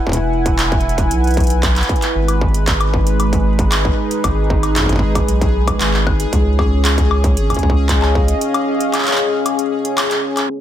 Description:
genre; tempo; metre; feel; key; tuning
IDM; 115 BPM; 4/4; straight; unclear; A4 = 440 Hz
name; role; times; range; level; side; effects
warm analog pad; sustained chords; 0.0-10.6 s; G#3 to G#5; -19 LUFS; left 1 dB; chorus
round analog bass; bass; 0.1-8.3 s; E1 to C#2; -16 LUFS; equal; none
booming analog drum machine; drums; 0.1-10.6 s; crash cymbal, handclaps, hi-hat, woodblock; -20 LUFS; left 1 dB; overdrive
electronic kick drum; drums; 0.1-8.3 s; none; -19 LUFS; equal; distortion
pulsing gated texture; texture; 3.0-10.6 s; G#4; -27 LUFS; equal; chorus, built-in reverb
room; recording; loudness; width
light reverb, digital ambience; low-pass filter; -13 LUFS; side -11 dB against mid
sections
0.0-10.5 A section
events
break 8.4-10.5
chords
0.0 E; 2.2 G#m7; 6.3 C#

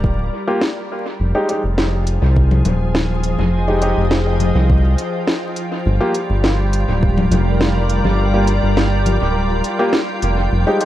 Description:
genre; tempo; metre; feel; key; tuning
ambient dub; 103 BPM; 4/4; straight; unclear; A4 = 440 Hz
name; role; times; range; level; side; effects
soft additive organ-like pad; sustained chords; 0.0-10.8 s; F3 to G5; -21 LUFS; equal; ensemble chorus, built-in reverb
round analog bass; bass; 0.0-10.7 s; D1 to C2; -16 LUFS; equal; none
electronic kick drum; drums; 0.0-7.1 s; none; -18 LUFS; equal; small room ambience
clear upright piano; stabs; 0.5-10.8 s; Ab3 to G4; -22 LUFS; equal; dub echo
organic electronic drum kit; drums; 0.6-10.8 s; congas, hi-hat, snare drum; -22 LUFS; left 1 dB; small room ambience, dub echo
room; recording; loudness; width
light reverb; vinyl crackle; -14 LUFS; side -13 dB against mid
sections
0.0-10.5 A section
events
break 9.4-10.5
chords
0.0 Gm7; 1.2 Fm9; 5.9 Gm7

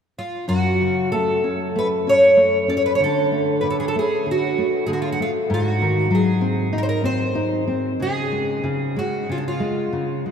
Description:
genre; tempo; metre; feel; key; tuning
fado; 95 BPM; 4/4; rubato; F# harmonic minor; A4 = 440 Hz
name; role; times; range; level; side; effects
fingerpicked twelve-string acoustic guitar; melody; 0.2-10.2 s; D4 to D5; -20 LUFS; right 1 dB; none
nylon-string guitar; accompaniment; 0.5-10.3 s; F#2 to D#4; -22 LUFS; left 1 dB; none
room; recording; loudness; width
wet cathedral reverb, RT60 6.0 s; in a vast, echoing space; -18 LUFS; side -7 dB against mid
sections
0.5-10.3 A section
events
none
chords
0.5 F#m; 3.0 D; 5.5 G#7; 8.0 C#

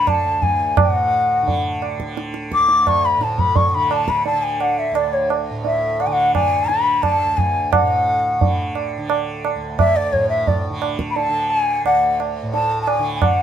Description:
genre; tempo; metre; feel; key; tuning
indian classical, Hindustani; 87 BPM; 5/4; straight; D raga yaman; A4 = 440 Hz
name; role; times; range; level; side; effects
bright reedy bansuri; melody; 0.0-13.4 s; C#5 to D6; -17 LUFS; left 2 dB; none
tanpura; drone; 0.0-13.4 s; D2 to D3; -27 LUFS; right 1 dB; none
tabla; percussion; 0.1-13.4 s; none; -20 LUFS; right 4 dB; none
room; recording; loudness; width
moderate studio reverb, RT60 0.7 s; band playing live in one room; -16 LUFS; side -9 dB against mid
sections
0.0-13.4 A section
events
none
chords
none

